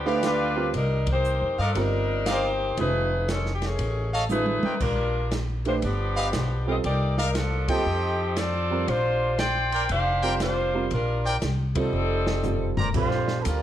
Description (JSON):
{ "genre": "jazz, big band swing", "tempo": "118 BPM", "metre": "4/4", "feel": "swing 66% on 8ths", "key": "unclear", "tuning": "A4 = 444 Hz", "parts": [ { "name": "clear saxophone section", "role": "melody", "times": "0.0-12.7 s", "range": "Eb3 to G5", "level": "-26 LUFS", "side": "left 1 dB", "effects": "none" }, { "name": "upright bass", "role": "bass", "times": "0.0-13.6 s", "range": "F1 to G2", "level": "-27 LUFS", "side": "equal", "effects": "none" }, { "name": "warm grand piano", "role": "accompaniment", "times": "0.1-13.6 s", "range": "Eb3 to B4", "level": "-29 LUFS", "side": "right 5 dB", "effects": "none" }, { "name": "clear trumpet section", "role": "stabs", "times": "0.1-12.9 s", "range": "G4 to Bb5", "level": "-29 LUFS", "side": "equal", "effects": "none" }, { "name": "open jazz drum kit", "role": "drums", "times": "0.2-13.6 s", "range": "crash cymbal, hi-hat, kick drum, ride cymbal, snare drum, toms", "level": "-32 LUFS", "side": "equal", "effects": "none" }, { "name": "clear trombone section", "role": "second line", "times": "12.9-13.6 s", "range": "G3 to C5", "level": "-27 LUFS", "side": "right 4 dB", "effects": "none" } ], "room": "moderate large studio reverb, RT60 1.0 s", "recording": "none", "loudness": "-22 LUFS", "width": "side -11 dB against mid", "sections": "0.0-12.9 A section", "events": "band accent 1.0, 7.6, 11.7; drum fill 4.3-4.8, 11.9-12.9", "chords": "0.0 G7; 0.7 Cm11; 2.8 F7alt; 4.8 Bb6; 5.8 G7; 6.8 Cm11; 7.9 F7; 8.9 F13; 12.9 Bb69" }